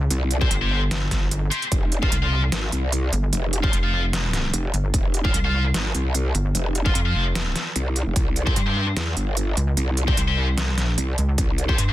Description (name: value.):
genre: heavy wobble dubstep.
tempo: 149 BPM.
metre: 4/4.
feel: swing 54% on 16ths, half-time.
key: F minor.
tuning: A4 = 440 Hz.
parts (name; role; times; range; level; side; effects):
pulsing pluck wobble bass; bass; 0.0-11.9 s; F1 to G2; -22 LUFS; equal; chorus, overdrive.
growl bass; bass; 0.1-11.8 s; F1 to E2; -23 LUFS; equal; chorus, overdrive.
dubstep drum kit; drums; 0.1-11.9 s; hi-hat, snare drum; -26 LUFS; right 1 dB; none.
scooped high-gain guitar; stabs; 0.4-11.9 s; C4 to F5; -27 LUFS; left 2 dB; distortion, dub echo.
electronic kick drum; drums; 0.4-11.8 s; none; -22 LUFS; equal; none.
room: digital ambience.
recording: dense, heavily limited modern master.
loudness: -20 LUFS.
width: side -14 dB against mid.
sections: 0.0-11.9 A section.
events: none.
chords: 0.0 C5; 1.7 F5; 8.2 C5.